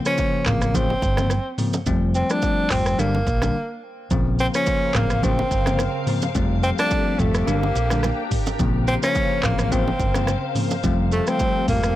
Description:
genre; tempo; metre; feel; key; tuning
afrobeats; 107 BPM; 4/4; swing 55% on 16ths; unclear; A4 = 440 Hz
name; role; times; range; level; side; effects
bell-like tine electric piano; accompaniment; 0.0-11.9 s; Db3 to C5; -25 LUFS; left 3 dB; none
breathy tenor saxophone; melody; 0.1-12.0 s; A3 to D4; -24 LUFS; right 1 dB; tape echo, plate reverb
afro-pop drum kit; drums; 0.1-12.0 s; handclaps, hi-hat, kick drum, rim click, shaker, toms; -25 LUFS; right 1 dB; soft clipping on snare, vintage 12-bit sampler grit
bongos and congas; percussion; 0.2-11.5 s; none; -30 LUFS; right 5 dB; none
fingered electric bass; bass; 0.5-11.9 s; F1 to Bb1; -24 LUFS; equal; none
glassy FM pad; sustained chords; 4.4-12.0 s; Db3 to G5; -29 LUFS; left 1 dB; ensemble chorus, built-in reverb
room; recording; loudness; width
light reverb; blown-out, overdriven recording, overdrive; -19 LUFS; side -14 dB against mid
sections
0.0-12.0 A section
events
break 3.5-4.1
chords
0.0 Bbmadd9; 1.9 Fadd9; 3.0 Gm; 4.1 Bbmadd9; 6.4 Fadd9; 7.5 Gm; 8.6 Bbmadd9; 10.8 Fadd9

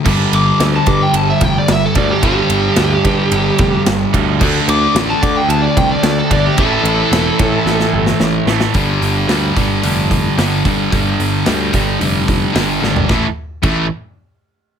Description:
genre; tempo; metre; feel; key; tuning
hard rock; 110 BPM; 4/4; straight; unclear; A4 = 439 Hz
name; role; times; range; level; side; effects
cranked stack guitar; riff; 0.0-13.9 s; G2 to D4; -18 LUFS; right 11 dB; overdrive
sludgy distorted guitar; riff; 0.0-13.9 s; G2 to D4; -18 LUFS; left 9 dB; overdrive
modern bright picked electric bass; bass; 0.1-13.9 s; E1 to D3; -19 LUFS; equal; none
big rock drum kit; drums; 0.1-13.8 s; crash cymbal, hi-hat, kick drum, ride cymbal, snare drum, toms; -18 LUFS; equal; none
biting lead guitar; melody; 0.3-8.2 s; G4 to D6; -18 LUFS; equal; overdrive, plate reverb
room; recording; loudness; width
moderate studio ambience, RT60 0.5 s; none; -12 LUFS; side -8 dB against mid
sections
0.0-8.8 A section; 8.8-13.1 B section; 13.1-14.8 C section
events
lead electric guitar solo 0.0-8.8; drum fill 7.7-8.8, 12.8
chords
0.1 G5; 4.4 D5; 6.6 A5; 8.8 G5; 13.1 A5

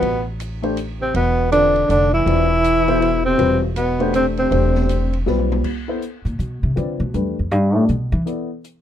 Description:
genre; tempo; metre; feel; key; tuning
modal jazz; 160 BPM; 3/4; swing 63% on 8ths; E phrygian; A4 = 440 Hz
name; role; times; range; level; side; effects
breathy tenor saxophone; melody; 0.0-5.2 s; B3 to E4; -18 LUFS; left 1 dB; none
warm trombone; second line; 0.0-5.2 s; B2 to E3; -24 LUFS; right 7 dB; none
upright bass; bass; 0.0-8.2 s; E1 to E3; -20 LUFS; equal; none
open jazz drum kit; drums; 0.0-8.8 s; crash cymbal, hi-hat, kick drum, ride cymbal, snare drum, toms; -33 LUFS; right 2 dB; none
dark baby grand piano; accompaniment; 0.6-8.5 s; B2 to D5; -23 LUFS; left 4 dB; none
room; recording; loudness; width
little or no reverb; minimal, uncompressed stereo recording; -16 LUFS; side -10 dB against mid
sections
0.0-5.6 A section; 5.6-8.8 B section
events
drum fill 5.3-5.6; upright bass solo 5.6-8.8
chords
0.0 Amadd9; 1.1 E5; 3.4 Amadd9/E; 5.6 Em7 (rootless); 7.9 Asus2

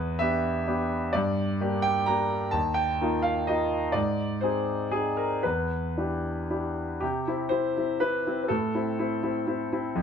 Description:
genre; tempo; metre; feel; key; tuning
neoclassical minimalist piano; 111-134 BPM; 3/4; rubato; C major; A4 = 441 Hz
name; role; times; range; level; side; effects
clear concert grand piano; solo; 0.0-10.0 s; Eb2 to Bb5; -25 LUFS; equal; none
room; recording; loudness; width
moderate stone room reverb, RT60 0.9 s; none; -25 LUFS; side -7 dB against mid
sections
0.0-7.0 A section; 7.0-10.0 B section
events
none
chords
0.0 Em7; 1.1 Gm; 2.5 Ebadd9; 3.9 Ab; 5.4 Em7; 7.0 C; 8.5 Am

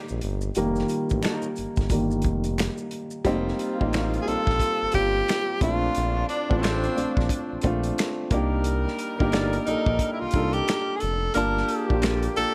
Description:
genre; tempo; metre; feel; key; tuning
R&B, neo-soul; 89 BPM; 4/4; swing 61% on 16ths; unclear; A4 = 439 Hz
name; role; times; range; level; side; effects
warm grand piano; accompaniment; 0.0-12.5 s; Eb3 to A5; -30 LUFS; equal; none
bright saxophone section; stabs; 0.0-12.5 s; A2 to Bb4; -37 LUFS; equal; none
smooth synth bass; bass; 0.1-12.5 s; F1 to C2; -31 LUFS; equal; none
maracas and finger snaps; percussion; 0.1-3.2 s; none; -45 LUFS; equal; none
warm soul drum kit; drums; 0.2-12.5 s; finger snaps, hi-hat, kick drum, snare drum; -30 LUFS; equal; none
electric guitar through a small old amp; second line; 1.2-12.3 s; Bb3 to D5; -36 LUFS; equal; none
breathy tenor saxophone; melody; 4.2-12.5 s; B3 to Bb4; -28 LUFS; equal; none
room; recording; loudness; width
light reverb; none; -25 LUFS; mono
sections
0.0-3.3 A section; 3.3-12.5 B section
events
grand piano solo 0.0-3.3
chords
0.0 F9sus4; 5.6 Bbmaj9; 8.3 Cm9; 11.3 Gm9

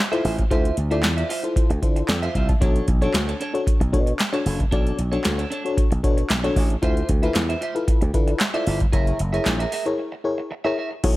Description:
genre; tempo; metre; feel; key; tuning
early-eighties boogie funk; 114 BPM; 4/4; straight; B dorian; A4 = 436 Hz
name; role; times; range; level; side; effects
clean electric guitar; riff; 0.0-11.1 s; D4 to E5; -29 LUFS; right 3 dB; lush chorus
FM electric piano with tremolo; accompaniment; 0.1-11.2 s; D4 to A5; -26 LUFS; left 3 dB; none
booming analog drum machine; drums; 0.1-11.2 s; crash cymbal, handclaps, hi-hat, kick drum, snare drum; -21 LUFS; equal; overdrive
slap bass with an envelope filter; bass; 0.2-11.2 s; F#1 to D3; -24 LUFS; equal; none
room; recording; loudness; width
digital ambience; none; -19 LUFS; side -18 dB against mid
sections
0.0-11.0 A section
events
break 10.0-11.0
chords
0.0 Dm9; 2.6 Bm9; 6.8 Dm9; 8.9 F#9

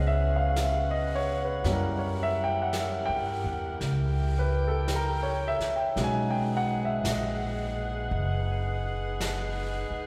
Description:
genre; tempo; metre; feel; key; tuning
jazz ballad; 56 BPM; 4/4; swing 66% on 8ths; B major; A4 = 440 Hz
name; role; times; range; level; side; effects
warm baby grand piano; accompaniment; 0.0-10.1 s; F#3 to G#5; -32 LUFS; equal; none
mellow saxophone section; sustained chords; 0.0-10.1 s; C#4 to G5; -38 LUFS; equal; none
upright bass; bass; 0.0-9.9 s; F#1 to G2; -32 LUFS; equal; none
jazz brush drum kit; drums; 0.6-10.1 s; brushed snare drum, hi-hat, snare drum; -41 LUFS; equal; none
room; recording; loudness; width
wet church reverb, RT60 3.4 s; recorded in a church or concert hall; -28 LUFS; mono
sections
0.0-10.1 A section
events
none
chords
0.0 Amaj13 (rootless); 1.6 F#7b9; 6.0 B6

